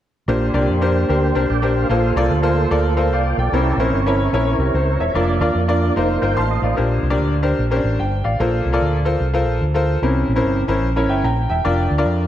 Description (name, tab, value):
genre	gospel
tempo	148 BPM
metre	4/4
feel	swing 63% on 8ths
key	Bb major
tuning	A4 = 437 Hz
part	clear upright piano	accompaniment	0.3-12.2 s	Bb2 to C6	-19 LUFS	left 1 dB	none
part	tonewheel organ	sustained chords	0.3-6.8 s	Bb3 to G5	-22 LUFS	right 3 dB	slow rotary speaker, overdrive, chorus vibrato
part	fingered electric bass	bass	0.3-12.3 s	E1 to F2	-19 LUFS	equal	none
room	moderate plate reverb, RT60 3.0 s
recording	dreamy mix soaked in reverb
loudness	-16 LUFS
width	side -11 dB against mid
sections	0.3-6.8 A section; 6.8-12.3 B section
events	tonewheel organ fill 6.0-6.8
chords	0.3 Bb69; 1.9 Bbmaj13; 3.5 C7b9; 5.2 Bb/F; 6.0 F7sus4; 6.8 Bb69; 8.4 Bbmaj9; 10.0 C7b9; 11.6 Bb/F